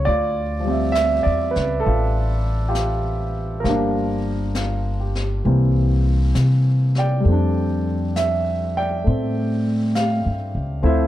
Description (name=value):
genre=jazz ballad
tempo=67 BPM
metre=4/4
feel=swing 68% on 8ths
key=unclear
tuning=A4 = 440 Hz
part: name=warm grand piano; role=accompaniment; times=0.0-11.1 s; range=E3 to G5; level=-22 LUFS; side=right 1 dB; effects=none
part: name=upright bass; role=bass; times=0.0-11.1 s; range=G1 to C3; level=-20 LUFS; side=equal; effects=none
part: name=jazz brush drum kit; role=drums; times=0.1-11.1 s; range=brushed snare drum, hi-hat, snare drum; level=-34 LUFS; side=left 3 dB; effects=none
room=light reverb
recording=dark, warm production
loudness=-18 LUFS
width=side -13 dB against mid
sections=0.0-11.1 A section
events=none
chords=0.1 Dm11; 3.6 Gm7; 5.4 C7; 7.3 F69